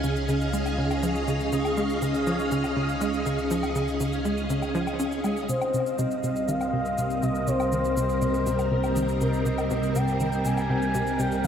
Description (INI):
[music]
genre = ambient, sequencer-driven space music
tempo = 121 BPM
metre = 4/4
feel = straight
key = C phrygian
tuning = A4 = 441 Hz
[part]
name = string machine, full ensemble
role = sustained chords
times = 0.0-11.5 s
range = G3 to F5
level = -27 LUFS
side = equal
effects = ensemble chorus
[part]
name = tight sequencer bass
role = riff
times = 0.0-11.5 s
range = C3 to Db4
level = -29 LUFS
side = equal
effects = lush chorus, tape echo
[part]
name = analog drone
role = bass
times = 0.0-11.5 s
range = C2 to Db2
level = -32 LUFS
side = equal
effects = chorus
[part]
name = shaker and woodblock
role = percussion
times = 0.0-11.5 s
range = none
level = -39 LUFS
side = left 3 dB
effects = tape echo
[part]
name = expressive synth lead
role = melody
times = 5.5-11.5 s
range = C5 to Ab5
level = -28 LUFS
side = left 1 dB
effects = chorus, tape echo
[sound]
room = moderate plate reverb, RT60 2.8 s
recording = dreamy mix soaked in reverb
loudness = -23 LUFS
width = side -8 dB against mid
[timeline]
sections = 0.0-11.5 A section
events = none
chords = 0.0 Db; 5.5 Cm7